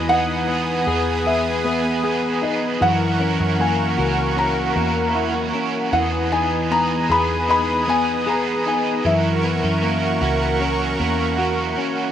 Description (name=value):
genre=dream pop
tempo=77 BPM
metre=4/4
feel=straight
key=E lydian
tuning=A4 = 440 Hz
part: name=felt-muted upright piano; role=melody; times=0.0-10.6 s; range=D#5 to B5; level=-22 LUFS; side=left 2 dB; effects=plate reverb, tape echo
part: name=cranked stack guitar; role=accompaniment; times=0.0-12.1 s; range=E3 to A#4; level=-26 LUFS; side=right 5 dB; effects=overdrive, harmonic tremolo, ensemble chorus, plate reverb
part: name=warm analog pad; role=sustained chords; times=0.0-12.1 s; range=A#4 to D#6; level=-24 LUFS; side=right 1 dB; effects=chorus, tremolo, plate reverb
part: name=clean electric guitar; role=arpeggios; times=0.0-12.1 s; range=E3 to G#4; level=-23 LUFS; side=left 2 dB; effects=ensemble chorus, plate reverb, tape echo
part: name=vintage muted picked electric bass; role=bass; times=0.0-11.7 s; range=C#2 to F#2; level=-26 LUFS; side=right 1 dB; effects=none
room=moderate small room ambience, RT60 0.5 s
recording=rough home demo mix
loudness=-17 LUFS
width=side -10 dB against mid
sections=0.0-12.1 A section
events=none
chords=0.0 Emaj7; 2.8 F#7; 5.9 Emaj7; 9.0 F#7